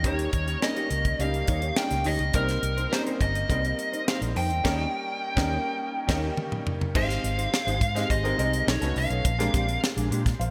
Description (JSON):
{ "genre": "polished 1980s jazz-funk pop", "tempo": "104 BPM", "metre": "4/4", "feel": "straight", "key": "Ab major", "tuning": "A4 = 439 Hz", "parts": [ { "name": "nasal lead guitar with a parked wah", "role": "melody", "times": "0.0-9.8 s", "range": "Bb4 to G5", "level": "-32 LUFS", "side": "equal", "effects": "overdrive" }, { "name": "clear grand piano", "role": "accompaniment", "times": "0.0-10.5 s", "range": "Gb3 to F5", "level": "-34 LUFS", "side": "equal", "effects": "analog chorus" }, { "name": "mellow electric guitar", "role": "riff", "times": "0.0-10.4 s", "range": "Ab3 to Db5", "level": "-38 LUFS", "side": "equal", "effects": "ensemble chorus" }, { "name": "vintage muted fingered electric bass", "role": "bass", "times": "0.0-10.5 s", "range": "G1 to Bb2", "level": "-31 LUFS", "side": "equal", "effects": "none" }, { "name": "tight funk drum kit", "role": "drums", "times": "0.0-10.5 s", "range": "crash cymbal, hi-hat, kick drum, snare drum, toms", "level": "-31 LUFS", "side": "equal", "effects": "gated reverb" } ], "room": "light reverb, small room ambience", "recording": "bright 1980s-style digital production", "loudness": "-26 LUFS", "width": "mono", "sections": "0.0-7.0 A section; 7.0-10.5 B section", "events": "band accent 4.6-7.0; drum fill 5.8-7.0", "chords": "0.0 Eb7; 2.3 Cm7; 4.6 Eb7; 7.0 Abmaj7; 8.7 B9; 9.3 Bb13", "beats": "| 0.04 0.62 1.19 1.77 | 2.35 2.92 3.50 4.07 | 4.65 5.22 5.80 6.38 | 6.95 7.53 8.10 8.68 | 9.25 9.83 10.40" }